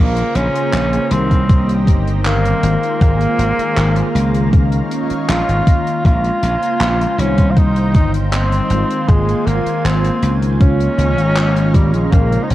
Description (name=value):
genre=vaporwave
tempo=79 BPM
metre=4/4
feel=straight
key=unclear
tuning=A4 = 440 Hz
part: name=warm tenor saxophone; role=melody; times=0.0-12.5 s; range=G3 to F4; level=-20 LUFS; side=equal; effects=tape echo
part: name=mellow synth brass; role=accompaniment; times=0.0-12.5 s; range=Db3 to C5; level=-20 LUFS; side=equal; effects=lush chorus
part: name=lush unison pad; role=sustained chords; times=0.0-12.5 s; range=Eb4 to Bb5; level=-28 LUFS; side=equal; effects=chorus, vintage 12-bit sampler grit
part: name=glassy slap bass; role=bass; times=0.0-12.5 s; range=G1 to Db2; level=-16 LUFS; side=equal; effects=none
part: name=damped 70s drum kit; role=drums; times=0.2-12.5 s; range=handclaps, hi-hat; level=-26 LUFS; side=equal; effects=studio reverb
part: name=electronic kick drum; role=drums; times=1.3-12.3 s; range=none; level=-12 LUFS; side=equal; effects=studio reverb
room=small room ambience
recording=dark, warm production, cassette tape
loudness=-12 LUFS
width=side -14 dB against mid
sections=0.0-12.5 A section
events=none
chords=0.0 Bbm9; 1.1 Cm7; 2.6 Ab69; 4.5 Db69; 6.0 Bbm9; 7.2 Cm7; 8.7 Ab69; 10.6 Db69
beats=0.73 1.49 2.25 | 3.01 3.77 4.53 5.29 | 6.05 6.81 7.57 8.33 | 9.09 9.85 10.61 11.37 | 12.13